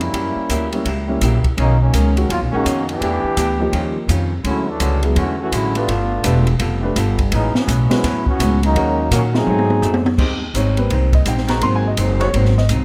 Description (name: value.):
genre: jazz, big band swing.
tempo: 167 BPM.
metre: 4/4.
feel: swing 64% on 8ths.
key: unclear.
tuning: A4 = 440 Hz.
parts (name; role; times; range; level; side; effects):
brilliant trombone section; second line; 0.0-10.0 s; Eb3 to Ab4; -24 LUFS; equal; none.
archtop guitar, miked and amplified; accompaniment; 0.0-12.8 s; Ab2 to A4; -27 LUFS; equal; none.
upright bass; bass; 0.0-12.8 s; Fb1 to Bb2; -21 LUFS; equal; none.
open jazz drum kit; drums; 0.0-12.8 s; crash cymbal, hi-hat, kick drum, ride cymbal, snare drum, toms; -26 LUFS; equal; none.
warm baby grand piano; accompaniment; 0.7-12.7 s; Eb3 to C6; -25 LUFS; equal; none.
warm saxophone section; sustained chords; 10.2-12.3 s; Eb3 to G4; -31 LUFS; equal; none.
room: light reverb.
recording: none.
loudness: -17 LUFS.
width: mono.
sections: 0.0-10.2 A section; 10.2-12.8 B section.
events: trombone section solo 0.0-10.2; drum fill 9.5-10.2; grand piano solo 10.2-12.8.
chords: 0.1 Gb7b9; 1.6 Cbmaj9; 3.0 Em7; 3.7 Eb9; 4.4 Dmaj9#11; 5.9 G9; 7.3 A69; 8.8 Ebm7; 9.5 Ab7b9; 10.2 Abmaj7; 11.6 Ab7.